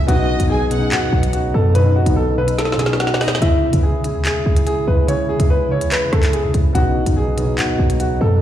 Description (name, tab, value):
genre	hip hop, drill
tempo	144 BPM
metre	4/4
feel	half-time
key	C# minor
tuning	A4 = 440 Hz
part	warm studio violin section	second line	0.0-3.4 s	D#5 to G#5	-28 LUFS	equal	tape echo
part	concert harp	accompaniment	0.0-8.4 s	B2 to B4	-21 LUFS	equal	low-pass filter
part	mellow French horn section	sustained chords	0.0-8.4 s	C#3 to E4	-26 LUFS	equal	stereo widening
part	short 808-style bass	bass	0.0-8.4 s	B1 to C#3	-18 LUFS	equal	none
part	clear upright piano	melody	0.1-8.4 s	E4 to C#5	-21 LUFS	left 1 dB	low-pass filter, tape echo
part	drill drum kit	drums	0.1-8.1 s	handclaps, hi-hat, rim click, snare drum	-23 LUFS	equal	none
room	light reverb, small room ambience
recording	played on a big sound system in a bare room, large studio reverb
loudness	-14 LUFS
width	side -11 dB against mid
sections	0.0-3.4 A section; 3.4-8.4 A section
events	drum fill 2.6-3.4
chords	0.1 Badd9; 3.4 C#m; 6.8 Badd9